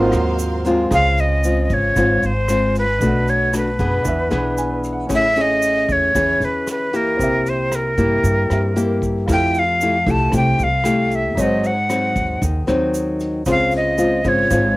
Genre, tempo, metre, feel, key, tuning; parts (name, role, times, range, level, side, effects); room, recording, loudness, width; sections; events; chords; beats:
bossa nova; 115 BPM; 4/4; straight; A4 = 439 Hz
clear baby grand piano; accompaniment; 0.0-14.8 s; Gb3 to F6; -28 LUFS; right 2 dB
nylon-string guitar; accompaniment; 0.0-14.8 s; G2 to Ab4; -20 LUFS; left 2 dB
rich studio violin section; sustained chords; 0.0-0.9 s; Bb4 to C6; -32 LUFS; right 1 dB
upright bass; bass; 0.0-14.8 s; Ab1 to Ab2; -22 LUFS; equal
vintage brush drum kit; drums; 0.1-14.6 s; hi-hat, kick drum, rim click; -29 LUFS; equal
tube shaker; percussion; 0.1-14.8 s; -35 LUFS; right 6 dB
breathy bright jazz flute; melody; 0.9-14.8 s; Bb4 to A5; -19 LUFS; equal; cassette tape
little or no reverb; home recording on cassette; -15 LUFS; side -19 dB against mid
0.9-14.8 A section
grand piano fill 4.3-5.1
0.0 Ab13; 0.9 Dbmaj7; 3.0 Cbm7; 4.1 E7; 5.1 Amaj7; 7.2 C7; 9.3 Fmaj9; 11.4 Ab7; 13.5 Dbmaj7
0.40 | 0.92 1.44 1.96 2.49 | 3.01 3.53 4.05 4.58 | 5.10 5.62 6.15 6.67 | 7.19 7.71 8.24 8.76 | 9.28 9.81 10.33 10.85 | 11.37 11.90 12.42 12.94 | 13.46 13.99 14.51